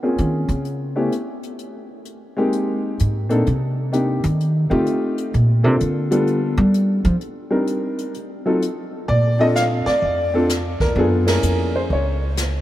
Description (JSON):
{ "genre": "jazz piano trio", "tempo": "128 BPM", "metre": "4/4", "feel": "swing 66% on 8ths", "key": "Bb major", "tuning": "A4 = 440 Hz", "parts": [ { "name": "warm upright piano", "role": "melody", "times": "0.0-12.4 s", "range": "Gb3 to F5", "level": "-20 LUFS", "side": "equal", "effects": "none" }, { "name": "upright bass", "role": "bass", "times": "0.2-12.6 s", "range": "Db2 to G3", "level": "-19 LUFS", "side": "equal", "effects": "none" }, { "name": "jazz brush drum kit", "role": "drums", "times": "0.2-12.6 s", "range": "brushed snare drum, hi-hat, kick drum, ride cymbal, snare drum", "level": "-29 LUFS", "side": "equal", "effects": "none" } ], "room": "moderate cathedral reverb, RT60 5.0 s", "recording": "in a vast, echoing space", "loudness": "-17 LUFS", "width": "side -14 dB against mid", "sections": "0.0-9.1 A section; 9.1-12.6 B section", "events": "upright bass solo 0.0-9.1; band accent 11.2", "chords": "0.0 Bbm7; 0.7 N.C.; 1.6 Abmaj7; 3.5 Cm7; 4.4 F7; 5.3 Bbmaj7; 6.3 G7; 7.2 Cm7; 8.2 N.C.; 9.1 Bbmaj7; 11.0 Gb7", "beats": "0.18 0.65 1.12 | 1.59 2.06 2.53 3.00 | 3.47 3.94 4.40 4.87 | 5.34 5.81 6.28 6.75 | 7.21 7.68 8.15 8.62 | 9.09 9.56 10.03 10.50 | 10.97 11.44 11.91 12.38" }